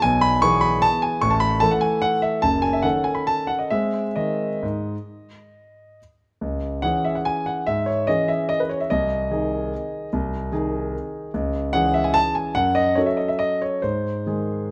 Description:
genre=classical, piano waltz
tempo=128-157 BPM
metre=3/4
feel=rubato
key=C# minor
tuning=A4 = 440 Hz
part: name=warm concert grand piano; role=solo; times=0.0-14.7 s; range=F#1 to C#6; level=-22 LUFS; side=equal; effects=none
room=moderate recital hall reverb, RT60 1.4 s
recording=close, detailed microphones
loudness=-22 LUFS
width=mono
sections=0.0-6.4 A section; 6.4-14.7 B section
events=none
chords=0.0 E; 1.2 A5; 2.4 D#m7b5/F#; 3.7 G#; 6.4 C#m; 8.9 G#/B#; 11.3 C#m; 12.6 F#m; 13.8 G#

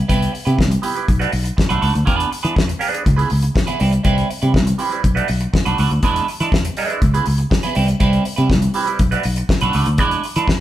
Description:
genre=disco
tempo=121 BPM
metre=4/4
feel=straight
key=unclear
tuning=A4 = 442 Hz
part: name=semi-hollow electric guitar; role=accompaniment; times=0.1-10.5 s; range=G3 to B4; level=-21 LUFS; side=right 4 dB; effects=phaser
part: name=fingered electric bass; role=bass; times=0.1-10.6 s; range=B1 to E3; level=-18 LUFS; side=equal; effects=none
part: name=damped 70s drum kit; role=drums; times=0.1-10.6 s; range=hi-hat, kick drum, snare drum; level=-20 LUFS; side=left 1 dB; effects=none
room=wet studio reverb, RT60 0.8 s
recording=band playing live in one room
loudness=-15 LUFS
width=side -13 dB against mid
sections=0.0-10.6 A section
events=none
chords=0.0 Cmaj7; 1.1 Bm7; 2.1 E7; 3.1 C#m7; 3.8 Cmaj7; 5.0 Bm7; 6.0 E7; 7.0 C#m7; 7.8 Cmaj7; 9.0 Bm7; 10.0 E7

